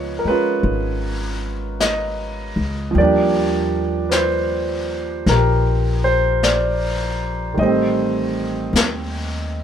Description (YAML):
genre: jazz ballad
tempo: 52 BPM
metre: 4/4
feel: swing 66% on 8ths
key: Eb major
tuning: A4 = 440 Hz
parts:
  - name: warm concert grand piano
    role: accompaniment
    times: 0.0-9.6 s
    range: Eb3 to Eb5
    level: -19 LUFS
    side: right 2 dB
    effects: none
  - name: upright bass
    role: bass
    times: 0.0-9.6 s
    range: Ab1 to Eb2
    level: -23 LUFS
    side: left 1 dB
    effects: none
  - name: vintage brush drum kit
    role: drums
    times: 0.6-9.6 s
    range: brushed snare drum, hi-hat, snare drum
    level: -25 LUFS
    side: left 3 dB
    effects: none
room: light reverb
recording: minimal, uncompressed stereo recording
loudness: -17 LUFS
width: side -9 dB against mid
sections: 0.0-9.6 A section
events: none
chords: 0.0 Db9; 3.0 Ebmaj9; 7.6 Am7b5